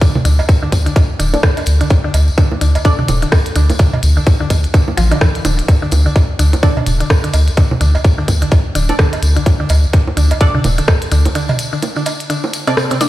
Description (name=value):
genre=minimal techno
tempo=127 BPM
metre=4/4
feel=swing 59% on 16ths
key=unclear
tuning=A4 = 440 Hz
part: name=mallet-like synth pluck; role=riff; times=0.0-13.1 s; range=C3 to D4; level=-20 LUFS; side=equal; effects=chorus, sidechain pumping, dub echo
part: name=electronic kick drum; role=drums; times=0.0-11.0 s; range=none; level=-11 LUFS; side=equal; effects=none
part: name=minimal click drum kit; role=drums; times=0.0-13.1 s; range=hi-hat, rim click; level=-22 LUFS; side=equal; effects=none
part: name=tambourine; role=percussion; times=0.0-13.1 s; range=none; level=-27 LUFS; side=left 2 dB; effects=none
part: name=electronic toms, bongos and cowbell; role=percussion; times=0.2-13.1 s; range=none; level=-22 LUFS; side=right 3 dB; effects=overdrive, digital delay
part: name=saturated sub bass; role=bass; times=0.3-11.3 s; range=D1 to D2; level=-12 LUFS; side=equal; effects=sidechain pumping
part: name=filtered dub chord stab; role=stabs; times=1.3-3.0, 6.6-12.7 s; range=D4 to D5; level=-22 LUFS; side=right 2 dB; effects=wide subtle chorus, digital delay
room=little or no reverb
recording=played on a big sound system in a bare room, stone room reverb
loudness=-11 LUFS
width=side -15 dB against mid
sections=0.0-13.1 A section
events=break 11.4-13.1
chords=0.0 D5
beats=| 0.01 0.49 0.96 1.43 | 1.90 2.38 2.85 3.32 | 3.79 4.27 4.74 5.21 | 5.68 6.16 6.63 7.10 | 7.57 8.05 8.52 8.99 | 9.46 9.94 10.41 10.88 | 11.35 11.83 12.30 12.77